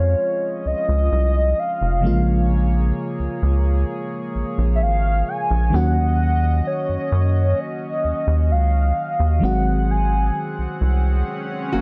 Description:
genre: contemporary R&B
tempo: 65 BPM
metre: 4/4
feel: straight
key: unclear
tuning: A4 = 440 Hz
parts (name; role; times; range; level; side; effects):
- warm velvety synth lead; melody; 0.0-10.8 s; Db5 to Ab5; -26 LUFS; equal; chorus, tape echo
- FM electric piano; accompaniment; 0.0-11.8 s; C3 to Ab4; -28 LUFS; equal; none
- chorused pulse-width pad; sustained chords; 0.0-11.8 s; Bb3 to Gb5; -34 LUFS; equal; none
- rubbery square bass; bass; 0.0-11.8 s; F1 to Gb2; -21 LUFS; equal; none
- nylon-string guitar; arpeggios; 11.7-11.8 s; Bb3 to Gb4; -23 LUFS; equal; none
room: light reverb, digital ambience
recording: dark, warm production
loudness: -20 LUFS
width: mono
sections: 0.0-11.8 A section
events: none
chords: 0.0 Dbmaj7; 2.0 Bbm7; 5.7 Ebm7; 9.4 Ab7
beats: 0.19 1.11 | 2.04 2.96 3.88 4.81 | 5.73 6.65 7.58 8.50 | 9.42 10.35 11.27

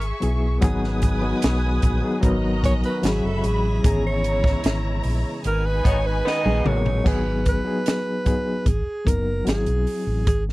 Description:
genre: lush 1970s-style soul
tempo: 75 BPM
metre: 4/4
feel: straight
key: G# minor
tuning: A4 = 440 Hz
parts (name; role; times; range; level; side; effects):
- breathy alto saxophone; melody; 0.0-10.4 s; G#4 to D#5; -26 LUFS; right 2 dB; none
- muted studio string section; second line; 0.0-7.0 s; D#4 to D#6; -31 LUFS; right 1 dB; none
- hollow-body short-scale fingered electric bass; bass; 0.0-10.5 s; F#1 to B1; -24 LUFS; equal; none
- compact cocktail drum kit; drums; 0.0-10.5 s; crash cymbal, hi-hat, kick drum, snare drum, toms; -22 LUFS; equal; none
- overdriven reed electric piano; accompaniment; 0.2-10.3 s; E3 to A#4; -26 LUFS; left 2 dB; fast tremolo
- tonewheel organ; sustained chords; 0.6-7.0 s; B#2 to A#4; -34 LUFS; right 1 dB; overdrive, chorus vibrato, slow rotary speaker
- worn celesta; texture; 2.6-8.5 s; B4 to C#6; -39 LUFS; left 3 dB; none
- clear horn section; stabs; 5.8-6.8 s; D#3 to D#4; -29 LUFS; left 2 dB; none
- electric guitar through a small old amp; riff; 6.3-7.2 s; F#3 to B4; -30 LUFS; right 4 dB; none
room: little or no reverb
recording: dry, close 1970s-style studio recording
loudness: -19 LUFS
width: side -19 dB against mid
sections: 0.0-7.1 A section; 7.1-10.5 B section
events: alto saxophone solo 0.0-7.1; band accent 3.8-7.1; drum fill 6.3-7.1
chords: 0.0 F#9sus4/G#; 0.6 G#m7; 3.0 G#7alt; 3.8 C#m7/G#; 5.5 G#m9; 7.1 G#m7; 8.7 Bmaj7; 9.5 G#7alt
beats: | 0.63 1.43 2.23 3.04 | 3.84 4.65 5.45 6.25 | 7.06 7.86 8.66 9.47 | 10.27

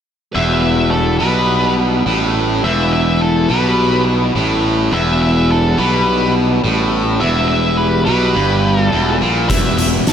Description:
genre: blues rock power trio and southern rock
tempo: 105 BPM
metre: 4/4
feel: straight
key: E minor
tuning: A4 = 440 Hz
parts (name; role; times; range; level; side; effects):
- dark smooth lead guitar; second line; 0.3-10.1 s; E4 to B4; -25 LUFS; right 2 dB; overdrive, slapback echo
- biting overdriven guitar; riff; 0.3-10.1 s; E2 to B2; -16 LUFS; equal; slapback echo
- octave-fuzz lead guitar; melody; 0.4-10.1 s; A4 to E5; -20 LUFS; left 1 dB; distortion, slapback echo
- overdriven tonewheel organ; sustained chords; 0.4-10.1 s; G3 to C5; -27 LUFS; right 3 dB; none
- fuzz fingered electric bass; bass; 0.4-10.1 s; E1 to B1; -18 LUFS; equal; overdrive
- oversized low-tuned drum kit; drums; 9.5-10.1 s; hi-hat, kick drum, snare drum; -15 LUFS; equal; none
room: moderate lush hall reverb, RT60 2.6 s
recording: big arena sound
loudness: -12 LUFS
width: side -8 dB against mid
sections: 0.4-10.1 A section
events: none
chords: 0.4 Em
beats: | 0.35 0.92 1.49 2.06 | 2.63 3.21 3.78 4.35 | 4.92 5.49 6.07 6.64 | 7.21 7.78 8.35 8.93 | 9.50 10.07

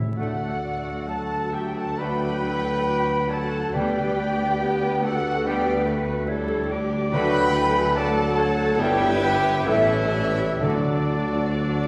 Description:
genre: classical, slow romantic movement for symphony orchestra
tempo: 69 BPM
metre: 4/4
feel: uneven beats, rubato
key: D major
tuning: A4 = 438 Hz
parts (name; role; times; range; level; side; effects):
- muted symphonic violin section; second line; 0.0-11.9 s; A4 to G5; -38 LUFS; equal; none
- warm oboe; second line; 0.0-11.9 s; D5 to B5; -34 LUFS; equal; none
- clear trumpet section; stabs; 0.0-11.9 s; D4 to B4; -30 LUFS; equal; none
- timpani; percussion; 0.0-11.9 s; A2 to D3; -33 LUFS; equal; none
- muted symphonic violin section; melody; 0.2-11.9 s; D5 to B5; -34 LUFS; equal; none
- bright flute section; second line; 0.2-11.9 s; D5 to B5; -33 LUFS; equal; none
- clear clarinet; second line; 0.2-11.9 s; G4 to D5; -35 LUFS; equal; none
- clear bassoon; accompaniment; 0.2-11.9 s; E3 to B3; -35 LUFS; equal; none
- muted symphonic viola section; accompaniment; 0.2-11.9 s; F#3 to B4; -35 LUFS; equal; none
- clear trombone section; sustained chords; 0.2-11.0 s; A2 to A3; -38 LUFS; equal; none
- mellow French horn section; sustained chords; 0.2-11.9 s; F#3 to E4; -36 LUFS; equal; none
- dark tuba; bass; 0.2-11.9 s; G1 to D2; -32 LUFS; equal; none
- muted symphonic double bass section; bass; 0.2-11.9 s; G1 to D2; -35 LUFS; equal; none
- muted symphonic cello section; bass; 2.0-11.9 s; F#4 to B4; -34 LUFS; equal; none
room: wet scoring stage reverb, RT60 1.6 s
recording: heard from further back in the room, vinyl crackle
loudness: -23 LUFS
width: mono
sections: 0.2-11.9 A section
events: timpani fill 0.0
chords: 0.2 D; 8.8 Em/G; 9.7 A9; 10.6 D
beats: | 0.17 1.09 1.99 2.87 | 3.75 4.63 5.47 6.29 | 7.14 7.98 8.80 9.67 | 10.62 11.60

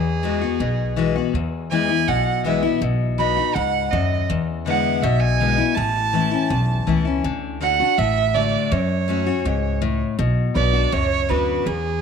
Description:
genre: honky-tonk and classic country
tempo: 163 BPM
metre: 4/4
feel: straight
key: unclear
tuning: A4 = 435 Hz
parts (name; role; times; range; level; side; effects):
- rich fiddle; melody; 0.0-12.0 s; G#4 to B5; -22 LUFS; right 9 dB; none
- picked steel-string acoustic guitar; accompaniment; 0.0-12.0 s; E2 to F#4; -22 LUFS; left 8 dB; none
- upright bass; bass; 0.0-12.0 s; A1 to F#2; -23 LUFS; right 1 dB; none
room: wet spring reverb, RT60 1.8 s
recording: 1960s-style stereo with parts hard left and right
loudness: -18 LUFS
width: side -6 dB against mid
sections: 0.0-12.0 A section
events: none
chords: 0.0 Eadd9; 1.3 E; 2.8 B; 4.3 E7; 5.8 A; 7.2 D; 8.7 F#m; 10.2 Bm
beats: 0.23 0.60 0.97 | 1.34 1.71 2.08 2.45 | 2.82 3.19 3.55 3.92 | 4.29 4.66 5.03 5.40 | 5.77 6.13 6.50 6.87 | 7.24 7.61 7.98 8.35 | 8.71 9.08 9.45 9.82 | 10.19 10.56 10.93 11.29 | 11.66

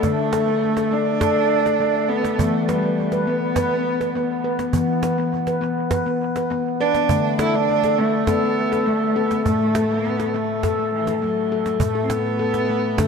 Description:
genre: world meditative, meditative tuned percussion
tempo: 102 BPM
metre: 4/4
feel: straight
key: unclear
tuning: A4 = 440 Hz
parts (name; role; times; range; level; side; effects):
- dark cello; melody; 0.0-13.1 s; E3 to E4; -23 LUFS; right 5 dB; dub echo
- handpan; arpeggios; 0.0-13.1 s; A2 to B4; -20 LUFS; left 3 dB; none
- cajon; percussion; 0.0-13.1 s; none; -28 LUFS; right 4 dB; dub echo
room: wet plate reverb, RT60 3.1 s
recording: echo-heavy mix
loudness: -18 LUFS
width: side -5 dB against mid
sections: 0.0-11.8 A section; 11.8-13.1 B section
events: none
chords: 0.0 D5; 2.4 E5; 7.1 D5; 9.5 Asus2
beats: | 0.04 0.62 1.21 1.80 | 2.39 2.98 3.56 4.15 | 4.74 5.33 5.92 6.51 | 7.10 7.68 8.27 8.86 | 9.45 10.04 10.63 11.22 | 11.81 12.40 12.99

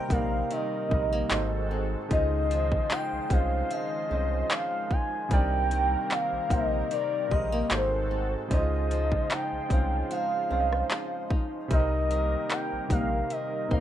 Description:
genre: contemporary R&B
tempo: 75 BPM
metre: 4/4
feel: swing 54% on 16ths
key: C phrygian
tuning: A4 = 441 Hz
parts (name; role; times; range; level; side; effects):
- gliding portamento lead; melody; 0.0-13.8 s; C5 to Ab5; -30 LUFS; equal; chorus, phaser, digital delay
- warm concert grand piano; accompaniment; 0.0-13.8 s; Ab2 to F5; -35 LUFS; right 3 dB; none
- lush unison pad; sustained chords; 0.0-13.8 s; Eb3 to C5; -36 LUFS; left 1 dB; chorus
- nylon-string guitar; arpeggios; 0.0-13.8 s; Ab2 to Eb4; -36 LUFS; equal; none
- glassy synth bell; texture; 0.0-13.8 s; C5 to Eb6; -47 LUFS; equal; chorus, digital delay
- saturated sub bass; bass; 0.1-13.8 s; Ab1 to Db2; -30 LUFS; equal; none
- trap drum kit; drums; 0.1-13.8 s; handclaps, hi-hat, kick drum, rim click; -28 LUFS; equal; vintage 12-bit sampler grit
room: light reverb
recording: rough home demo mix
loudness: -25 LUFS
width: side -11 dB against mid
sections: 0.0-13.8 A section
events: none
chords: 0.0 Cm9; 1.3 Ab7b9; 2.1 Dbmaj9; 5.3 Cm9; 7.7 Ab7b9; 8.5 Dbmaj9; 11.7 Cm7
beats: 0.51 1.31 | 2.11 2.91 3.71 4.51 | 5.31 6.11 6.91 7.71 | 8.51 9.31 10.11 10.91 | 11.71 12.51 13.31

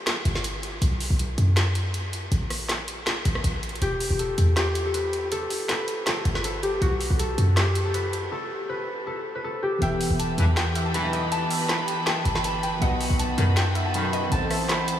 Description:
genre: hip hop, trap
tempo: 160 BPM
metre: 4/4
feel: half-time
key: E harmonic minor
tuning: A4 = 440 Hz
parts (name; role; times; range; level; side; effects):
- trap drum kit; drums; 0.1-15.0 s; handclaps, hi-hat, rim click, snare drum; -29 LUFS; equal; none
- short 808-style bass; bass; 0.3-15.0 s; E1 to F#2; -24 LUFS; equal; none
- concert harp; melody; 3.8-15.0 s; F#4 to B5; -28 LUFS; left 1 dB; low-pass filter, tape echo
- warbly dusty pluck; second line; 9.8-15.0 s; D#5 to G5; -35 LUFS; left 1 dB; chorus, phaser, tape echo
- mellow tine electric piano; accompaniment; 9.8-15.0 s; D#3 to C5; -31 LUFS; right 2 dB; analog chorus, low-pass filter
- warm symphonic string section; sustained chords; 9.8-15.0 s; D#3 to C5; -32 LUFS; left 1 dB; none
- bright brass ensemble; stabs; 10.4-14.2 s; B1 to E3; -33 LUFS; left 2 dB; none
room: moderate huge ambient reverb, RT60 8.8 s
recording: dreamy mix soaked in reverb, small room reverb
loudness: -22 LUFS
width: side -11 dB against mid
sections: 0.0-9.8 A section; 9.8-15.0 B section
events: break 0.0-3.8, 8.3-9.8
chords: 0.0 N.C.; 0.8 B5; 2.3 N.C.; 3.8 Em; 6.8 B5; 8.3 N.C.; 9.8 Em; 12.8 B; 14.3 Am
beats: 0.07 0.44 | 0.82 1.19 1.57 1.94 | 2.32 2.69 3.07 3.44 | 3.82 4.19 4.57 4.94 | 5.32 5.69 6.07 6.44 | 6.82 7.19 7.57 7.94 | 8.32 8.69 9.07 9.44 | 9.82 10.19 10.57 10.94 | 11.32 11.69 12.07 12.44 | 12.82 13.19 13.57 13.94 | 14.32 14.69

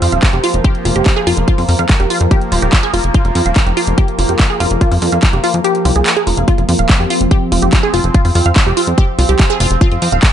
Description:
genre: psychedelic trance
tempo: 144 BPM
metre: 4/4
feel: straight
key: unclear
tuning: A4 = 437 Hz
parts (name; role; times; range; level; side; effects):
- bubbling stepped-filter texture; sustained chords; 0.0-10.3 s; F3 to C4; -20 LUFS; left 1 dB; chorus, built-in reverb, vintage 12-bit sampler grit, sidechain pumping
- wide unison pluck; riff; 0.0-10.2 s; F4 to F5; -17 LUFS; moving between left 1 dB and right 6 dB; auto-pan, sidechain pumping, digital delay
- plucky analog bass; bass; 0.0-10.2 s; Eb1 to F2; -15 LUFS; equal; none
- big-room dance drum kit; drums; 0.0-10.3 s; handclaps, hi-hat; -18 LUFS; equal; none
- electronic kick drum; drums; 0.2-10.3 s; none; -12 LUFS; equal; none
room: light reverb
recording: nothing above 10.7 kHz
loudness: -10 LUFS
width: side -10 dB against mid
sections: 0.0-6.5 A section; 6.5-10.3 B section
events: filter sweep on synth arpeggio sound 0.0-6.5; kick drops out 5.6-6.5; drop 6.5-10.3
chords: 0.0 F5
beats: 0.23 0.65 1.06 | 1.48 1.90 2.31 2.73 | 3.15 3.56 3.98 4.39 | 4.81 5.23 5.64 6.06 | 6.48 6.89 7.31 7.73 | 8.14 8.56 8.98 9.39 | 9.81 10.23

